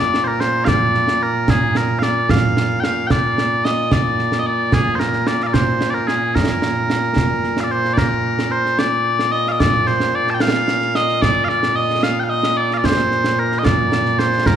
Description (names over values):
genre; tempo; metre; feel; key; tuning
scottish traditional, Scottish pipe music; 74 BPM (dotted quarters); 6/8; straight; Bb mixolydian; A4 = 440 Hz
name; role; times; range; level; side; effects
mellow small bagpipes; melody; 0.0-14.6 s; Bb2 to A5; -17 LUFS; equal; none
concert snare drum and concert bass drum; drums; 0.1-14.6 s; none; -20 LUFS; right 2 dB; none
room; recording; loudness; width
moderate concert hall reverb, RT60 2.1 s; small room reverb; -15 LUFS; side -9 dB against mid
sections
0.0-8.0 A section; 8.0-14.6 B section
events
none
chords
none